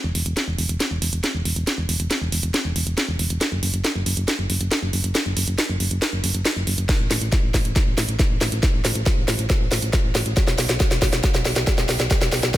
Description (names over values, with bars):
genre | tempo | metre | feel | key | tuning
uplifting trance | 138 BPM | 4/4 | straight | unclear | A4 = 441 Hz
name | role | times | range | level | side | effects
solid FM bass | bass | 0.0-12.5 s | E1 to B1 | -24 LUFS | equal | sidechain pumping
house drum kit | drums | 0.2-12.6 s | hi-hat, snare drum | -22 LUFS | equal | studio reverb
electronic kick drum | drums | 6.9-12.6 s | none | -20 LUFS | equal | studio reverb
room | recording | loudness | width
light reverb, digital ambience | none | -19 LUFS | side -14 dB against mid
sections
0.0-12.6 A section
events
build-up 0.0-12.6; drum fill 0.0-12.6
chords
none